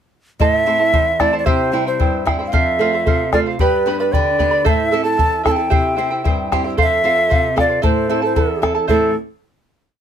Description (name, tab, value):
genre	andean folk, Andean ensemble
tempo	113 BPM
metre	2/4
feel	straight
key	A minor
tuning	A4 = 439 Hz
part	large quena	melody	0.4-9.1 s	A4 to A5	-17 LUFS	equal	none
part	charango	accompaniment	0.4-9.1 s	E4 to B5	-20 LUFS	right 5 dB	none
part	nylon-string guitar	accompaniment	0.4-9.2 s	E2 to A4	-22 LUFS	right 1 dB	none
part	bombo	percussion	0.4-9.1 s	none	-19 LUFS	left 2 dB	none
room	light reverb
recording	close, detailed microphones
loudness	-14 LUFS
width	side -9 dB against mid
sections	0.4-8.9 A section; 8.9-10.0 final chord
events	none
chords	0.4 Am; 1.5 C; 2.5 F; 3.6 G; 4.7 Am; 5.7 C; 6.8 F; 7.8 Am